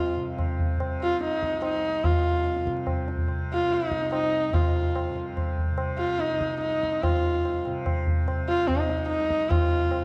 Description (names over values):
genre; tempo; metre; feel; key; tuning
indian classical, Hindustani; 145 BPM; 3/4; straight; unclear; A4 = 441 Hz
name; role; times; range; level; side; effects
dark sarangi; melody; 0.0-10.0 s; Eb4 to F4; -28 LUFS; equal; tape echo
tanpura; drone; 0.0-10.0 s; C2 to C3; -37 LUFS; equal; none
tabla; percussion; 0.4-10.0 s; none; -29 LUFS; equal; none
room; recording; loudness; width
moderate recital hall reverb, RT60 1.4 s; dark, warm production; -26 LUFS; mono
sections
0.0-7.0 A section; 7.0-10.0 B section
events
none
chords
none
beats
0.39 | 0.81 1.23 1.64 | 2.06 2.47 2.89 | 3.30 3.72 4.13 | 4.55 4.96 5.38 | 5.79 6.20 6.62 | 7.03 7.45 7.86 | 8.27 8.68 9.10 | 9.51 9.92